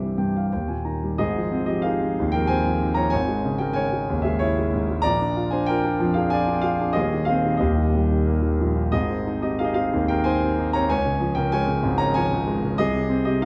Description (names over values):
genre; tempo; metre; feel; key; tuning
classical, lyrical solo piano; 93 BPM; 3/4; uneven beats, rubato; Ab major; A4 = 440 Hz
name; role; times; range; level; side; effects
warm concert grand piano; solo; 0.0-13.4 s; Eb1 to Bb5; -22 LUFS; equal; none
room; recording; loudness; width
wet recital hall reverb, RT60 1.5 s; none; -23 LUFS; mono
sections
0.0-1.2 A section; 1.2-13.4 B section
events
grand piano fill 0.0-1.2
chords
0.0 C; 0.5 Eb; 1.2 Ab6; 3.1 Dbmadd9/Ab; 5.0 Bb7; 7.0 Ab/Eb; 7.6 Eb; 8.9 Abadd9; 10.9 Db; 12.8 Ab/C